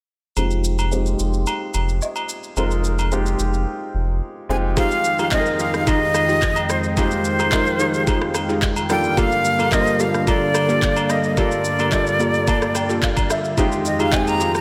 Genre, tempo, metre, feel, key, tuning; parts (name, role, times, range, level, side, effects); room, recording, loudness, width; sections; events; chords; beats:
amapiano; 109 BPM; 4/4; straight; F dorian; A4 = 438 Hz
warm grand piano; accompaniment; 0.4-14.6 s; G3 to Bb5; -28 LUFS; equal; subtle chorus, low-pass filter
saturated sub bass; bass; 0.4-4.8 s; F1; -23 LUFS; equal
smooth R&B drum kit; drums; 0.4-14.6 s; handclaps, kick drum, rim click, shaker; -26 LUFS; equal
agogo bells and woodblock; percussion; 0.4-14.3 s; -32 LUFS; equal
breathy bright jazz flute; melody; 4.5-14.6 s; C5 to Bb5; -23 LUFS; equal; analog delay
warm analog pad; sustained chords; 4.8-14.6 s; F2 to G5; -27 LUFS; equal; chorus, sidechain pumping
glassy wavetable pluck; stabs; 4.8-14.6 s; Bb3 to A4; -27 LUFS; equal; chorus, analog delay
moderate plate reverb, RT60 2.8 s; dreamy mix soaked in reverb; -20 LUFS; mono
0.4-4.8 A section; 4.8-14.6 B section
filter sweep on grand piano 0.4-4.8; break 3.7-4.8; grand piano fill 11.9-13.6
0.4 Fm9; 8.9 Gm9; 13.6 Fm9
| 0.36 0.92 1.47 2.02 | 2.57 3.12 3.67 4.22 | 4.77 5.32 5.87 6.42 | 6.97 7.52 8.07 8.62 | 9.17 9.72 10.27 10.82 | 11.37 11.93 12.47 13.03 | 13.58 14.13